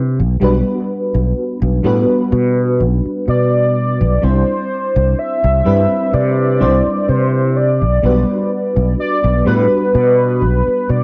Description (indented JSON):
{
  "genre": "vaporwave",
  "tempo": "63 BPM",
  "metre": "4/4",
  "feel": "swing 53% on 16ths",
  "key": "G major",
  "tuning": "A4 = 442 Hz",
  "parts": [
    { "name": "fretless electric bass", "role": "bass", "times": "0.0-11.0 s", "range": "B1 to C3", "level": "-17 LUFS", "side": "equal", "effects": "analog chorus" },
    { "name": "mellow FM electric piano", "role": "accompaniment", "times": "0.4-11.0 s", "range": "G3 to C5", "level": "-20 LUFS", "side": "equal", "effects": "ensemble chorus, analog delay" },
    { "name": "warm velvety synth lead", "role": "melody", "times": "3.3-11.0 s", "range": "B4 to E5", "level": "-20 LUFS", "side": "equal", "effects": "chorus, tape echo" }
  ],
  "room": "moderate recital hall reverb, RT60 1.4 s",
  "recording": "dark, warm production, cassette tape",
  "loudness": "-15 LUFS",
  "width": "mono",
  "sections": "0.0-4.2 A section; 4.2-11.0 B section",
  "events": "none",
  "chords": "0.0 Gmaj7/B; 4.2 Cmaj9; 7.6 Gmaj7/B",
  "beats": "| 0.42 1.37 2.32 3.27 | 4.23 5.18 6.13 7.08 | 8.04 8.99 9.94 10.89"
}